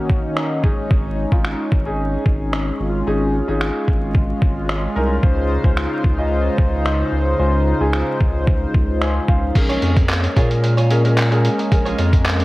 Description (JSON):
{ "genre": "dance-pop", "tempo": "111 BPM", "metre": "4/4", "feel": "straight", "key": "Bb minor", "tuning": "A4 = 440 Hz", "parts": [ { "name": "chorused pulse-width pad", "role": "sustained chords", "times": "0.0-12.4 s", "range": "Db3 to C5", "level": "-23 LUFS", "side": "equal", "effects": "sidechain pumping, cassette tape" }, { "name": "lo-fi sampler-style drum kit", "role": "drums", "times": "0.1-12.4 s", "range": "crash cymbal, finger snaps, handclaps, hi-hat, kick drum", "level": "-18 LUFS", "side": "equal", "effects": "cassette tape" }, { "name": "warm concert grand piano", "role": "accompaniment", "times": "0.6-12.2 s", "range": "Db4 to Ab5", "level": "-25 LUFS", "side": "left 1 dB", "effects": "sidechain pumping, cassette tape" }, { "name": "saturated sub bass", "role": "bass", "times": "0.9-12.4 s", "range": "Ab1 to Bb2", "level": "-20 LUFS", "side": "equal", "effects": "sidechain pumping" }, { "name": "direct-recorded clean electric guitar", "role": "riff", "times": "9.6-12.4 s", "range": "Db4 to Db5", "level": "-27 LUFS", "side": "right 4 dB", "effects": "lush chorus, cassette tape" } ], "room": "light reverb, digital ambience", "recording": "home recording on cassette, vinyl crackle", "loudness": "-16 LUFS", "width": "side -19 dB against mid", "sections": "0.0-9.6 A section; 9.6-12.4 B section", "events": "grand piano fill 8.7-9.6", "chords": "0.0 Ebm7; 0.6 Absus4; 5.2 Dbmaj7; 9.6 Bbm7" }